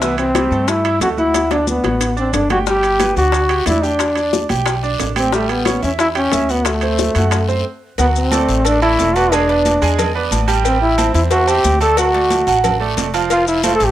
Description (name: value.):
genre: latin, salsa.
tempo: 181 BPM.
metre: 4/4.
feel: straight.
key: unclear.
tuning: A4 = 440 Hz.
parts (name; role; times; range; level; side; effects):
warm trombone; melody; 0.0-13.9 s; A3 to A4; -16 LUFS; equal; none.
bright grand piano; accompaniment; 0.0-13.9 s; E3 to G#5; -21 LUFS; right 6 dB; cassette tape, plate reverb.
upright bass; bass; 0.0-13.9 s; E1 to G2; -21 LUFS; left 1 dB; none.
bongos and cowbell; percussion; 0.0-13.9 s; none; -24 LUFS; left 10 dB; none.
congas; percussion; 0.0-13.9 s; none; -27 LUFS; left 1 dB; none.
maracas; percussion; 0.0-13.9 s; none; -28 LUFS; left 10 dB; none.
timbales and agogo bells; percussion; 0.2-13.8 s; none; -24 LUFS; right 9 dB; none.
guiro; percussion; 2.7-13.9 s; none; -30 LUFS; left 9 dB; none.
room: wet studio reverb, RT60 0.5 s.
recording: home recording on cassette.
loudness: -13 LUFS.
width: side -12 dB against mid.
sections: 0.0-8.0 A section; 8.0-13.9 B section.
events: drum fill 1.3-2.7; stop 7.7-8.0.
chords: 0.0 C6; 1.3 D; 2.7 G; 4.0 Em7; 5.3 A7; 6.7 D7; 8.0 Dadd9; 9.3 E7; 10.7 Am7; 12.0 D; 13.3 F.